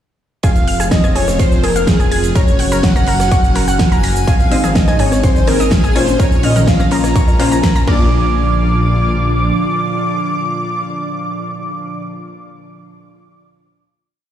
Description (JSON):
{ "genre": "progressive house", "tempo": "125 BPM", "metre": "4/4", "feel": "straight", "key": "unclear", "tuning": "A4 = 440 Hz", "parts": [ { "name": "soft octave-layered synth lead", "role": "melody", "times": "0.4-12.0 s", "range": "Ab4 to D6", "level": "-21 LUFS", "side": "equal", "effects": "chorus, cassette tape, digital delay" }, { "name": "soft supersaw", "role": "second line", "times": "0.4-12.0 s", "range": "Ab4 to D6", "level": "-25 LUFS", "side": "right 3 dB", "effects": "sidechain pumping, ping-pong delay" }, { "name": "airy breathy pad", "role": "sustained chords", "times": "0.4-12.0 s", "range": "Ab2 to Gb4", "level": "-21 LUFS", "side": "right 1 dB", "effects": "chorus, sidechain pumping" }, { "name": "analog pluck", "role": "arpeggios", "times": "0.4-8.3 s", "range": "Ab4 to Bb6", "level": "-25 LUFS", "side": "left 1 dB", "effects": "chorus, sidechain pumping, ping-pong delay" }, { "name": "dark detuned saw bass", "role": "bass", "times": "0.4-9.5 s", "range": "F1 to Bb1", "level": "-18 LUFS", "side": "equal", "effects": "sidechain pumping" }, { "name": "big-room dance drum kit", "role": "drums", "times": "0.4-8.0 s", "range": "crash cymbal, hi-hat, rim click, shaker, snare drum", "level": "-21 LUFS", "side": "right 1 dB", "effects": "small room ambience" }, { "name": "electronic kick drum", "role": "drums", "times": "0.4-8.0 s", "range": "none", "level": "-14 LUFS", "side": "equal", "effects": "small room ambience" }, { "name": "modern studio drum kit", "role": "drums", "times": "0.4-7.9 s", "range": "ride cymbal, snare drum", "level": "-31 LUFS", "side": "right 2 dB", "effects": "sidechain pumping on cymbals, high-pass filter on cymbals, small room ambience, high-pass filter on snare, high-pass filter on room" }, { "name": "backwards swelling texture", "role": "texture", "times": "1.3-8.1 s", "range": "Ab5 to F6", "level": "-30 LUFS", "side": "left 2 dB", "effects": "built-in reverb, sidechain pumping" }, { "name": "wide unison pluck", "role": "stabs", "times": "4.5-12.0 s", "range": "Ab2 to Eb5", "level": "-19 LUFS", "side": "left 4 dB", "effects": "sidechain pumping, ping-pong delay" }, { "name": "electronic bongos, congas and toms", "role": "percussion", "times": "4.5-8.1 s", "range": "none", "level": "-24 LUFS", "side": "left 2 dB", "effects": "none" } ], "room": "digital ambience", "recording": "played on a big sound system in a bare room, stone room reverb", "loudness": "-12 LUFS", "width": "side -10 dB against mid", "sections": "0.4-8.1 drop; 8.1-12.0 final hit", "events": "drop 0.4-8.1; band accent 7.6", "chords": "0.4 Fm; 2.4 Gb; 4.3 Ab; 6.2 Bbm; 7.9 Bb" }